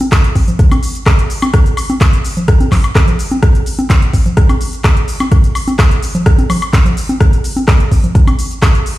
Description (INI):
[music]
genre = house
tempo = 127 BPM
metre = 4/4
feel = straight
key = none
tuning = none
[part]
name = deep house drum kit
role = drums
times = 0.0-9.0 s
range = handclaps, hi-hat, shaker, woodblock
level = -20 LUFS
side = left 1 dB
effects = sidechain pumping on hats, sidechain pumping on perc
[part]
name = electronic congas and rim click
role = percussion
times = 0.0-8.7 s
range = none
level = -18 LUFS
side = equal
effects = overdrive, sidechain pumping on perc, sidechain pumping on snare
[part]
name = electronic kick drum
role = drums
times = 0.1-8.7 s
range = none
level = -9 LUFS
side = equal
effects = none
[sound]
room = little or no reverb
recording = played on a big sound system in a bare room, stone room reverb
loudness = -9 LUFS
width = side -16 dB against mid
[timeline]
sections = 0.0-9.0 A section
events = none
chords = none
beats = 0.12 0.59 1.06 | 1.54 2.01 2.48 2.95 | 3.43 3.90 4.37 4.84 | 5.32 5.79 6.26 6.73 | 7.21 7.68 8.15 8.62